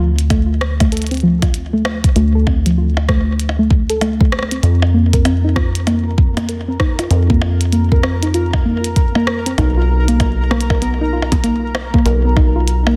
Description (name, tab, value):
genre	IDM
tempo	97 BPM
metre	4/4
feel	swing 62% on 16ths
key	unclear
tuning	A4 = 440 Hz
part	soft round pluck	arpeggios	0.0-12.9 s	F3 to Bb4	-21 LUFS	equal	chorus, cassette tape, digital delay
part	deep acid bass	bass	0.0-13.0 s	B1 to F2	-19 LUFS	equal	none
part	glitchy drum kit	drums	0.2-13.0 s	hi-hat, percussion blips, rim click	-25 LUFS	equal	soft clipping on snare, delay
part	electronic kick drum	drums	0.3-12.5 s	none	-17 LUFS	equal	none
part	pulsing gated texture	texture	4.6-13.0 s	Bb4 to Bb5	-30 LUFS	equal	chorus, built-in reverb
room	light reverb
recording	dense, heavily limited modern master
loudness	-15 LUFS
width	mono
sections	0.0-13.0 A section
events	none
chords	0.0 Dm; 4.6 F5; 9.6 B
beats	0.30 0.92 1.54 | 2.16 2.78 3.40 4.01 | 4.63 5.25 5.87 6.49 | 7.11 7.72 8.34 8.96 | 9.58 10.20 10.82 11.44 | 12.05 12.67